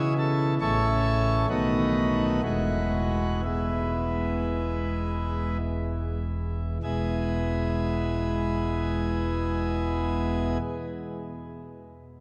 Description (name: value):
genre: classical, chorale-style piece for pipe organ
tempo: 49-73 BPM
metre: 4/4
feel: rubato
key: E major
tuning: A4 = 441 Hz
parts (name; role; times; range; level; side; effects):
- pipe organ, principal chorus; solo; 0.0-10.6 s; E1 to C#5; -27 LUFS; equal; none
room: wet cathedral reverb, RT60 4.8 s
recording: none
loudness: -27 LUFS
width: mono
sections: 0.0-6.8 A section; 6.8-11.7 B section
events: slowing down 0.0-6.8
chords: 0.0 C#m; 0.6 A; 1.5 B7; 2.4 E